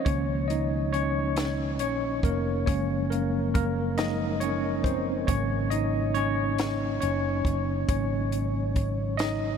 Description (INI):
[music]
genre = slow six-eight R&B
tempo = 46 BPM (dotted quarters)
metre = 6/8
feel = straight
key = Db major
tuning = A4 = 441 Hz
[part]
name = tine electric piano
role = accompaniment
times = 0.0-9.6 s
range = Db3 to Eb5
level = -27 LUFS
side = left 1 dB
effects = fast stereo tremolo
[part]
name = fingered electric bass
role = bass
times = 0.1-9.6 s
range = F1 to Db2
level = -30 LUFS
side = equal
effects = none
[part]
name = compact cocktail drum kit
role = drums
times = 0.1-9.4 s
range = hi-hat, kick drum, snare drum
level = -31 LUFS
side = equal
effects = none
[sound]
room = moderate huge ambient reverb, RT60 5.0 s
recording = dreamy mix soaked in reverb, low-pass filter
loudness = -24 LUFS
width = side -7 dB against mid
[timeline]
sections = 0.1-9.6 A section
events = tine electric piano solo 0.1-9.6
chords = 0.1 Db6; 2.7 Gbmaj9; 5.3 Ab9sus4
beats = | 0.07 1.37 | 2.67 3.98 | 5.28 6.59 | 7.89 9.20